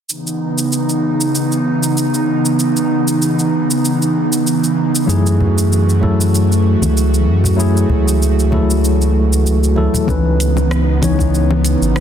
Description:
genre	sunset chillout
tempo	96 BPM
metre	4/4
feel	swing 55% on 16ths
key	C# minor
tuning	A4 = 439 Hz
part	airy breathy pad	sustained chords	0.2-12.0 s	C#3 to F#4	-16 LUFS	right 1 dB	chorus
part	deep house drum kit	drums	0.1-12.0 s	congas, hi-hat, rim click, shaker	-22 LUFS	left 1 dB	overdrive
part	tine electric piano	accompaniment	5.1-12.0 s	E3 to C#5	-18 LUFS	moving between left 4 dB and right 6 dB	medium tremolo, auto-pan, low-pass filter, digital delay
part	warm sub bass	bass	5.1-12.0 s	G#1 to F#2	-14 LUFS	equal	tube saturation
part	congas	percussion	5.4-10.1 s	none	-24 LUFS	left 1 dB	none
part	electronic kick drum	drums	10.1-11.3 s	none	-22 LUFS	equal	none
room	moderate plate reverb, RT60 2.2 s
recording	dense, heavily limited modern master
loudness	-12 LUFS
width	side -8 dB against mid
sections	0.1-10.1 A section; 10.1-12.0 B section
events	filter sweep on tine electric piano 10.1-12.0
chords	0.1 C#m9; 5.1 F#m9; 10.1 C#m9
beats	| 0.09 0.71 1.34 1.96 | 2.59 3.21 3.84 4.46 | 5.09 5.71 6.34 6.96 | 7.59 8.21 8.84 9.46 | 10.09 10.71 11.34 11.96

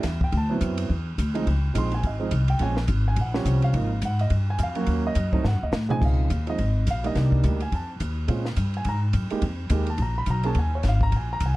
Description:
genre	jazz, small-group swing and bop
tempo	211 BPM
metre	4/4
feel	swing 60% on 8ths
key	Db major from 6.0 s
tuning	A4 = 440 Hz
part	warm concert grand piano	accompaniment	0.0-11.6 s	Db2 to C6	-28 LUFS	right 3 dB	none
part	upright bass	bass	0.0-11.6 s	Ab1 to Bb2	-23 LUFS	equal	none
part	compact cocktail drum kit	drums	0.0-11.5 s	crash cymbal, hi-hat, kick drum, ride cymbal, snare drum, toms	-30 LUFS	equal	none
room	little or no reverb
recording	dark, warm production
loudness	-22 LUFS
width	side -18 dB against mid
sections	0.0-6.0 A section; 6.0-11.6 A section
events	drum fill 5.4-6.0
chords	0.3 D13; 1.5 Dbmaj9; 2.6 Bbm7; 3.2 Bbm69; 3.7 Ab6; 4.9 Ebm7; 5.4 Ab7b9; 6.0 Dbmaj9; 7.2 Cm9; 7.7 F7; 8.3 Bbm9; 9.4 Fm11; 10.0 Abm11/Bb; 10.6 Eb5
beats	0.04 | 0.33 0.61 0.90 1.18 | 1.47 1.75 2.04 2.32 | 2.60 2.89 3.17 3.46 | 3.74 4.03 4.31 4.59 | 4.88 5.16 5.45 5.73 | 6.01 6.30 6.58 6.87 | 7.15 7.44 7.72 8.00 | 8.29 8.57 8.86 9.14 | 9.42 9.71 9.99 10.28 | 10.56 10.84 11.13 11.41

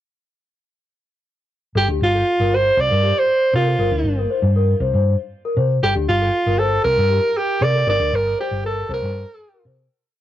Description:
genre	afrobeat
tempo	117 BPM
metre	4/4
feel	straight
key	G minor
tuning	A4 = 441 Hz
part	edgy alto saxophone	melody	1.8-9.6 s	F4 to D5	-18 LUFS	right 1 dB	tape echo
part	small celesta	arpeggios	1.8-9.8 s	G4 to C5	-24 LUFS	left 5 dB	none
part	hollow-body short-scale fingered electric bass	bass	1.8-9.9 s	G1 to C3	-20 LUFS	equal	none
room	light reverb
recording	rough rehearsal-room recording, warm saturation, nothing above 7.7 kHz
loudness	-16 LUFS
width	side -12 dB against mid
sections	1.8-9.9 groove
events	fade-out 7.9-9.9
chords	1.8 G7(no3); 2.8 C5; 3.8 Gm7; 4.8 C5; 5.8 G7(no3); 6.9 C5; 7.9 Gm; 8.9 C5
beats	| 1.75 2.26 2.77 3.28 | 3.79 4.30 4.81 5.32 | 5.83 6.34 6.85 7.36 | 7.87 8.39 8.90 9.41

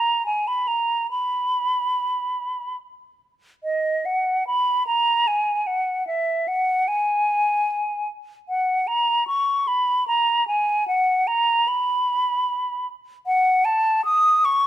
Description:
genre	classical, baroque-style fantasia for unaccompanied flute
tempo	75 BPM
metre	3/4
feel	rubato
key	B major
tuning	A4 = 442 Hz
part	hollow concert flute	solo	0.0-14.7 s	D#5 to D#6	-19 LUFS	equal	none
room	light reverb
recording	close, detailed microphones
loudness	-19 LUFS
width	side -12 dB against mid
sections	0.0-3.6 A section; 3.6-14.7 B section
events	none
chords	none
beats	0.26 | 1.10 1.95 2.79 | 3.64 4.46 5.27 | 6.08 6.89 7.69 | 8.49 9.29 10.08 | 10.88 11.69 12.48 | 13.27 14.05

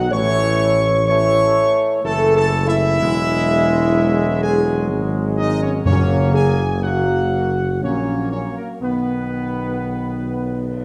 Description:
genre	classical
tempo	62 BPM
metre	3/4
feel	uneven beats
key	unclear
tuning	A4 = 440 Hz
part	bright trumpet section	melody	0.0-10.8 s	A#4 to C#6	-28 LUFS	equal	none
part	bright trombone section	sustained chords	0.0-10.8 s	D#3 to B3	-27 LUFS	equal	none
part	mellow French horn section	sustained chords	0.0-10.8 s	A#3 to C#5	-22 LUFS	equal	none
part	mellow tuba	bass	0.0-10.8 s	E1 to B1	-23 LUFS	equal	none
part	timpani	percussion	5.9-7.3 s	F#2	-22 LUFS	equal	none
room	wet recital hall reverb, RT60 1.4 s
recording	none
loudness	-18 LUFS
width	mono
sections	0.0-10.8 A section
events	none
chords	0.1 A; 3.0 Eadd9; 5.9 F#; 8.8 B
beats	| 0.11 1.08 2.03 | 2.99 3.95 4.90 | 5.86 6.83 7.81 | 8.82 9.84

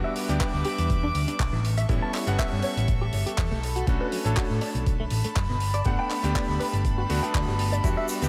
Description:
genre	nu-disco, nu disco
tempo	121 BPM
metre	4/4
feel	swing 54% on 16ths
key	unclear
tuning	A4 = 440 Hz
part	bright electric grand piano	accompaniment	0.0-8.3 s	G3 to F#5	-34 LUFS	equal	analog chorus, delay
part	rich chamber string section	sustained chords	0.0-8.3 s	G3 to D6	-35 LUFS	equal	sidechain pumping
part	direct-recorded clean electric guitar	riff	0.0-8.1 s	B2 to A5	-36 LUFS	equal	ensemble chorus, low-pass filter, delay
part	damped 70s drum kit	drums	0.2-8.3 s	handclaps, hi-hat, shaker	-36 LUFS	equal	none
part	hollow-body short-scale picked electric bass	bass	0.3-8.3 s	G1 to A2	-29 LUFS	equal	sidechain pumping
part	electronic kick drum	drums	0.4-7.9 s	none	-29 LUFS	equal	none
room	moderate lush hall reverb, RT60 1.9 s, studio reverb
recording	dreamy mix soaked in reverb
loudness	-26 LUFS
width	mono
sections	0.0-8.3 A section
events	none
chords	0.0 Em7; 1.6 A7; 3.6 Bm7; 5.6 Gmaj7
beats	0.40 0.90 1.39 | 1.89 2.39 2.88 3.38 | 3.87 4.37 4.87 5.36 | 5.86 6.35 6.85 7.34 | 7.84

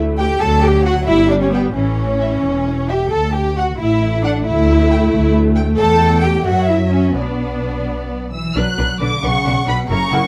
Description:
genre	quick classical-period movement for string orchestra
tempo	89 BPM (dotted quarters)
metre	6/8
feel	straight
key	B minor from 5.8 s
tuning	A4 = 439 Hz
part	rich chamber viola section	accompaniment	0.0-10.2 s	E3 to B4	-24 LUFS	equal	none
part	rich chamber double bass section	bass	0.0-10.2 s	E1 to F#2	-20 LUFS	equal	none
part	warm studio violin section	melody	0.2-10.3 s	D5 to F#6	-27 LUFS	equal	none
part	warm chamber violin section	second line	0.2-10.3 s	B4 to A#5	-24 LUFS	equal	none
part	rich symphonic cello section	bass	0.2-10.3 s	B2 to A4	-21 LUFS	equal	none
room	light reverb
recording	dark, warm production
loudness	-16 LUFS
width	mono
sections	0.0-8.6 A section; 8.6-10.3 B section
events	none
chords	0.4 D; 1.1 G; 1.8 A; 3.1 D; 4.5 A5/D; 5.8 Emadd11; 6.5 F#5; 7.2 Bm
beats	| 0.41 1.07 | 1.75 2.44 | 3.12 3.80 | 4.46 5.12 | 5.78 6.46 | 7.15 7.86 | 8.56 9.23 | 9.90

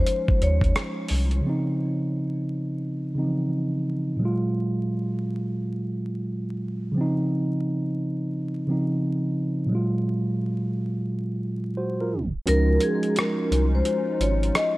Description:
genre	lo-fi hip hop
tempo	87 BPM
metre	4/4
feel	swing 65% on 16ths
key	Db major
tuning	A4 = 440 Hz
part	vibraphone with medium mallets	melody	0.0-0.7, 12.5-14.8 s	Ab4 to Eb5	-26 LUFS	left 1 dB	tape echo
part	mellow tine electric piano	accompaniment	0.0-14.8 s	Bb2 to C5	-25 LUFS	right 1 dB	none
part	hollow soft pad	sustained chords	0.0-1.4, 12.5-14.8 s	Ab3 to F4	-34 LUFS	left 2 dB	ensemble chorus
part	soft dub sub bass	bass	0.0-1.4, 12.5-14.5 s	Ab1 to Eb2	-22 LUFS	equal	none
part	dusty soul sampler-style drum kit	drums	0.1-1.4, 12.5-14.8 s	hi-hat, kick drum, rim click	-25 LUFS	equal	none
room	little or no reverb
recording	vinyl crackle, tape stop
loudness	-23 LUFS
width	side -19 dB against mid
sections	0.0-1.4 A section; 1.4-12.5 B section; 12.5-14.8 A section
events	tape stop 12.1-12.5; kick muted 12.5-14.8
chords	0.0 Dbmaj9; 4.2 Gbmaj9; 7.0 Dbmaj9; 9.7 Gbmaj9; 12.5 Dbmaj9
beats	0.06 0.75 | 1.44 2.13 2.82 3.51 | 4.20 4.88 5.58 6.26 | 6.95 7.64 8.33 9.02 | 9.71 10.40 11.09 11.78 | 12.47 13.16 13.85 14.54

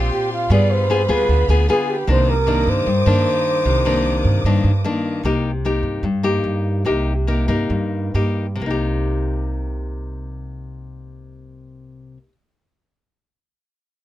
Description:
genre	bossa nova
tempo	129-152 BPM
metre	4/4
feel	straight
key	C minor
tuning	A4 = 440 Hz
part	nylon-string guitar	accompaniment	0.0-12.3 s	G2 to Ab4	-21 LUFS	left 3 dB	none
part	warm symphonic string section	sustained chords	0.0-5.2 s	Ab4 to Eb6	-30 LUFS	left 2 dB	none
part	upright bass	bass	0.0-12.2 s	C2 to G2	-20 LUFS	right 1 dB	none
part	breathy flugelhorn	melody	0.1-4.9 s	F4 to D5	-20 LUFS	right 2 dB	none
room	little or no reverb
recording	close, detailed microphones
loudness	-16 LUFS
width	side -14 dB against mid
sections	0.0-5.2 A section; 5.2-8.6 B section; 8.6-12.3 C section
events	slowing down 5.2-8.6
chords	0.5 G7b9; 2.1 Cm9; 5.2 Cm7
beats	0.10 | 0.50 0.89 1.29 1.68 | 2.08 2.47 2.87 3.26 | 3.65 4.05 4.45 4.84 | 5.24 5.63 6.03 6.43 | 6.85 7.27 7.70 8.14 | 8.60 9.07 9.53 10.00 | 10.46 10.93 11.39 11.86

